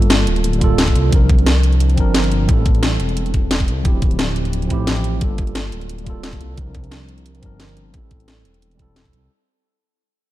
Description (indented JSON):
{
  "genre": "liquid drum and bass",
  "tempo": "176 BPM",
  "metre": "4/4",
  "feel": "swing 53% on 16ths",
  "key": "unclear",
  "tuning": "A4 = 440 Hz",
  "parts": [
    { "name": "mellow tine electric piano", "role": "accompaniment", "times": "0.0-9.3 s", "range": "F3 to Bb4", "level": "-23 LUFS", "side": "right 1 dB", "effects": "medium stereo tremolo, low-pass filter, dub echo" },
    { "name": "dark detuned saw bass", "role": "bass", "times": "0.0-9.3 s", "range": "D1 to C2", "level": "-19 LUFS", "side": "equal", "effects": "none" },
    { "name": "drum and bass drum kit", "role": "drums", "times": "0.0-9.2 s", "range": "hi-hat, snare drum", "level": "-21 LUFS", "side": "equal", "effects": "overdrive" },
    { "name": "electronic kick drum", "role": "drums", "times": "0.6-9.1 s", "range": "none", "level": "-16 LUFS", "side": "equal", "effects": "none" }
  ],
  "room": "little or no reverb",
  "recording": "dark, warm production",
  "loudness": "-14 LUFS",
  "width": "side -15 dB against mid",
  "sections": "0.0-9.3 A section",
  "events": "fade-out 0.0-9.3",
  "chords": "0.0 Gm9; 1.1 C9sus4; 2.5 Am7; 3.8 Dm11; 5.2 Gm9; 6.6 C9sus4; 7.9 Am7",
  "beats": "0.10 0.44 0.78 | 1.12 1.46 1.80 2.15 | 2.49 2.83 3.17 3.51 | 3.85 4.19 4.53 4.87 | 5.21 5.55 5.89 6.24 | 6.58 6.92 7.26 7.60 | 7.94 8.28 8.62 8.96"
}